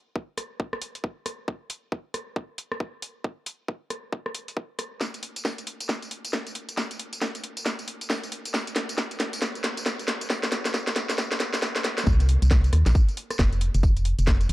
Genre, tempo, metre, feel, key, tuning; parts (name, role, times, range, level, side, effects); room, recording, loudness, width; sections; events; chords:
UK garage, two-step garage; 136 BPM; 4/4; swing 61% on 16ths; A4 = 440 Hz
electronic kick drum; drums; 0.2-14.4 s; -24 LUFS; equal; high-pass filter on kick, high-pass filter on room
garage drum kit; drums; 0.4-14.5 s; hi-hat, rim click, snare drum, tambourine; -28 LUFS; equal
organ-like FM bass; bass; 12.1-14.5 s; F1 to Eb2; -20 LUFS; equal
light reverb; dark, warm production, high-pass filter; -24 LUFS; side -18 dB against mid
0.0-12.1 A section; 12.1-14.5 B section
build-up 0.0-12.1; drum fill 5.0-12.1; drop 12.1-14.5